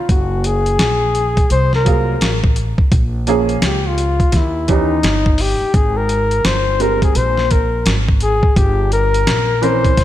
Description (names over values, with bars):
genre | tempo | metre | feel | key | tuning
hip hop, jazz-hop | 85 BPM | 4/4 | swing 62% on 16ths | unclear | A4 = 440 Hz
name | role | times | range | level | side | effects
mellow flugelhorn | melody | 0.0-10.0 s | Eb4 to C5 | -18 LUFS | left 3 dB | none
upright bass | bass | 0.1-10.0 s | Gb1 to Eb2 | -18 LUFS | equal | none
dusty soul sampler-style drum kit | drums | 0.1-10.0 s | hi-hat, kick drum, snare drum | -16 LUFS | equal | none
warm upright piano | accompaniment | 1.8-9.9 s | Fb3 to Bb4 | -20 LUFS | right 4 dB | wide subtle chorus
room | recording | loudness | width
light reverb, studio reverb | none | -13 LUFS | side -12 dB against mid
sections
0.0-10.0 A section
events
flugelhorn solo 0.0-10.0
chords
0.1 Gbadd9; 2.9 Bbm7; 4.3 Eb7b9; 5.7 Abmaj9; 8.6 Gdim